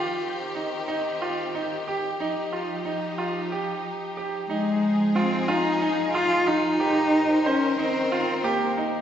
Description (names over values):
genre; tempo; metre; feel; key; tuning
contemporary instrumental, chamber music in an uneven meter; 182 BPM (eighths); 7/8; straight; C minor; A4 = 442 Hz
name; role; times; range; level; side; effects
rich studio string section; sustained chords; 0.0-9.0 s; Eb3 to C5; -31 LUFS; left 1 dB; none
bright grand piano; arpeggios; 0.0-9.0 s; Eb4 to C5; -27 LUFS; right 2 dB; none
warm cello; melody; 4.5-8.9 s; Ab3 to F4; -22 LUFS; left 1 dB; none
room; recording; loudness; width
wet concert hall reverb, RT60 2.2 s; heard from further back in the room, nothing above 8.0 kHz; -22 LUFS; side -9 dB against mid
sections
0.0-4.5 A section; 4.5-9.0 B section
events
none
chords
0.0 Cm; 2.2 Ebadd9; 4.5 Fm7; 6.8 Cm7